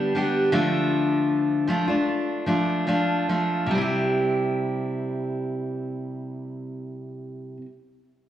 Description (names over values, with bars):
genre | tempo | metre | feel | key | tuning
pop | 71-80 BPM | 4/4 | straight | C major | A4 = 440 Hz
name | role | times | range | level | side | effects
fingerpicked steel-string acoustic guitar | accompaniment | 0.0-7.7 s | C3 to G4 | -23 LUFS | equal | slapback echo
room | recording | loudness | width
moderate plate reverb, RT60 2.6 s | live gig heard through the venue's PA, club reverb | -22 LUFS | side -11 dB against mid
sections
0.0-3.7 A section; 3.7-7.1 B section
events
slowing down 0.0-3.7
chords
0.0 G; 0.5 Dm; 3.7 C